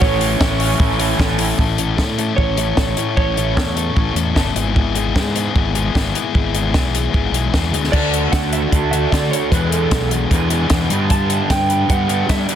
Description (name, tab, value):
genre	indie rock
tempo	151 BPM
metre	4/4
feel	straight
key	A major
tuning	A4 = 440 Hz
part	electric guitar through a small old amp	melody	0.0-4.5, 7.9-12.6 s	A4 to A5	-23 LUFS	right 5 dB	spring reverb, digital delay
part	raw garage guitar	riff	0.0-1.6, 7.9-12.6 s	E2 to B4	-23 LUFS	right 9 dB	overdrive, wide subtle chorus, digital delay
part	sludgy distorted guitar	riff	0.0-12.6 s	E2 to A4	-21 LUFS	left 8 dB	overdrive
part	fuzz fingered electric bass	bass	0.0-12.5 s	G1 to G3	-21 LUFS	equal	overdrive
part	compact cocktail drum kit	drums	0.0-12.6 s	crash cymbal, hi-hat, kick drum, snare drum	-19 LUFS	equal	none
room	small room ambience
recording	dense, heavily limited modern master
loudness	-15 LUFS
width	side -10 dB against mid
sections	0.0-1.6 A section; 1.6-7.9 B section; 7.9-12.6 C section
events	none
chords	0.0 A; 4.6 E/G#; 7.9 D; 9.5 E7sus4; 10.9 Gmaj7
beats	| 0.01 0.40 0.80 1.19 | 1.58 1.98 2.37 2.77 | 3.16 3.56 3.96 4.35 | 4.75 5.15 5.54 5.94 | 6.34 6.74 7.13 7.53 | 7.92 8.32 8.72 9.12 | 9.51 9.91 10.30 10.70 | 11.10 11.49 11.89 12.28